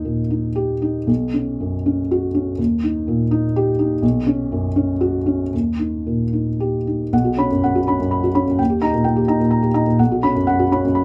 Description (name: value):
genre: neoclassical minimalist piano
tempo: 110-130 BPM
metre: 3/4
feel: rubato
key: B major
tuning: A4 = 438 Hz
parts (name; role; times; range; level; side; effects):
- felt-muted upright piano; solo; 0.0-11.0 s; B1 to B5; -19 LUFS; equal; none
room: little or no reverb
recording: close, detailed microphones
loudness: -19 LUFS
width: mono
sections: 0.0-7.1 A section; 7.1-11.0 A section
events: none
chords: 0.0 D#; 1.1 Bsus2; 2.6 D#; 4.0 Bsus2; 5.5 D#; 7.1 Bsus2; 8.6 D#; 10.0 Bsus2